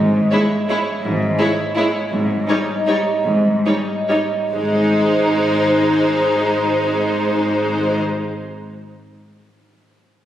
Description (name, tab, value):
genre	classical, orchestral ballroom waltz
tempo	126-178 BPM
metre	3/4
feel	rubato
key	Ab major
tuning	A4 = 442 Hz
part	concert harp	arpeggios	0.0-8.8 s	Ab2 to Fb5	-22 LUFS	equal	none
part	rich symphonic cello section	bass	0.0-8.0 s	Ab2	-22 LUFS	right 1 dB	none
part	rich symphonic double bass section	bass	0.0-8.0 s	Ab1	-27 LUFS	right 1 dB	none
part	rich symphonic violin section	melody	0.3-8.0 s	C5 to Db5	-24 LUFS	left 1 dB	none
part	rich symphonic violin section	second line	0.3-8.0 s	Eb4 to Fb4	-20 LUFS	equal	none
part	rich symphonic viola section	accompaniment	0.3-8.0 s	G3 to Ab3	-24 LUFS	right 1 dB	none
room	wet concert hall reverb, RT60 1.9 s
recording	recorded on a phone in the room, studio reverb, compression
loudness	-15 LUFS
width	side -11 dB against mid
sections	0.0-4.5 A section; 4.5-7.2 B section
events	slowing down 1.6-4.5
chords	0.0 Dbm/Ab; 2.1 Eb7/Ab; 4.5 Ab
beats	0.32 0.69 | 1.04 1.40 1.77 | 2.12 2.49 2.87 | 3.25 3.65 4.09 | 4.53 4.97 5.44 | 5.87 6.31 6.78